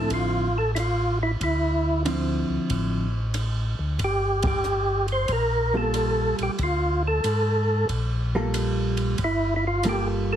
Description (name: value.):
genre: soul jazz organ trio.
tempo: 92 BPM.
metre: 4/4.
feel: swing 68% on 8ths.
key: unclear.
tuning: A4 = 441 Hz.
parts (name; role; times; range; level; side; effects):
percussive tonewheel organ; melody; 0.0-10.4 s; E4 to C5; -24 LUFS; equal; overdrive, chorus vibrato, stopped rotary speaker, plate reverb.
hollow-body jazz guitar; accompaniment; 0.0-10.4 s; D3 to A4; -27 LUFS; right 1 dB; none.
mellow tonewheel organ; bass; 0.0-10.4 s; G1 to G#2; -26 LUFS; equal; slow rotary speaker.
compact cocktail drum kit; drums; 0.1-10.0 s; hi-hat, kick drum, ride cymbal; -33 LUFS; right 1 dB; none.
room: light reverb.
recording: heavily compressed radio sound, multiband compression.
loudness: -22 LUFS.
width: side -10 dB against mid.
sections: 0.0-10.4 A section.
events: band accent 4.3-4.6.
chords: 0.0 Dm9; 4.0 Gm9.